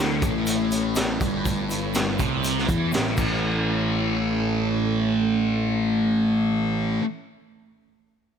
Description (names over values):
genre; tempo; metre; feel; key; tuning
psychedelic rock; 122 BPM; 4/4; straight; A mixolydian; A4 = 443 Hz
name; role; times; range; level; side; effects
ensemble organ-string; sustained chords; 0.0-7.0 s; A3 to C#5; -33 LUFS; right 4 dB; phaser, ensemble chorus
thick fuzz guitar; riff; 0.0-7.0 s; G2 to A3; -23 LUFS; equal; distortion, phaser
fuzz picked electric bass; bass; 0.0-7.0 s; G1 to E2; -28 LUFS; right 1 dB; overdrive
crunchy breakbeat drum kit; drums; 0.2-3.3 s; crash cymbal, hi-hat, kick drum, snare drum; -26 LUFS; equal; none
egg shaker; percussion; 0.2-3.6 s; none; -39 LUFS; left 10 dB; none
room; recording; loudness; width
light reverb, studio ambience; none; -21 LUFS; side -7 dB against mid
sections
0.0-3.4 A section; 3.4-7.3 B section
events
none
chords
0.0 A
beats
0.47 0.96 | 1.45 1.95 2.44 2.93 | 3.42 3.91 4.40 4.89 | 5.38 5.87 6.36 6.86